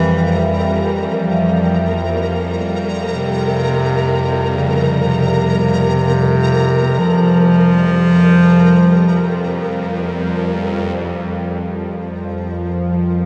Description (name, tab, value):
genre	dark ambient drone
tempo	free time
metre	none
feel	none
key	F harmonic minor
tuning	A4 = 439 Hz
part	warm bass clarinet	melody	0.0-10.0 s	C3 to F3	-18 LUFS	equal	delay
part	deep dark ambient pad	sustained chords	0.0-11.0 s	E5 to Ab5	-30 LUFS	equal	chorus, built-in reverb
part	bowed-like drone	drone	0.0-13.3 s	F2 to G3	-21 LUFS	equal	built-in reverb
part	flickering grainy texture	texture	0.0-13.3 s	Bb4	-25 LUFS	equal	built-in reverb
room	wet cathedral reverb, RT60 7.0 s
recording	cassette tape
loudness	-16 LUFS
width	mono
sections	0.0-11.0 A section; 11.0-13.3 B section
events	none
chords	0.0 Fmadd9; 11.0 N.C.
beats	free time